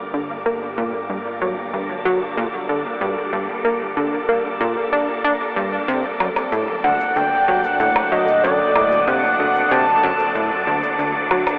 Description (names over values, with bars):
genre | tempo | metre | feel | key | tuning
ambient, sequencer-driven space music | 94 BPM | 4/4 | straight | G harmonic minor | A4 = 440 Hz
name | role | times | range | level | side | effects
phased string machine | sustained chords | 0.0-11.6 s | D3 to Bb4 | -26 LUFS | equal | ensemble chorus, phaser
fat analog bass | bass | 0.0-11.6 s | G1 to D2 | -35 LUFS | equal | none
wind-like tuned noise texture | texture | 0.0-11.6 s | Bb3 to D6 | -28 LUFS | equal | built-in reverb
plucky analog bass | riff | 0.1-11.5 s | D2 to D4 | -21 LUFS | equal | analog delay
shaker and percussion blips | percussion | 5.9-11.6 s | none | -25 LUFS | equal | overdrive, analog delay
pulse-width lead | melody | 6.8-10.7 s | D5 to A5 | -17 LUFS | equal | chorus, analog delay
room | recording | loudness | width
wet shimmer reverb, RT60 8.6 s | telephone sound | -17 LUFS | side -30 dB against mid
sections
0.0-11.6 A section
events
fade-in on string machine 0.0-11.6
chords
0.0 Gmadd9; 5.9 D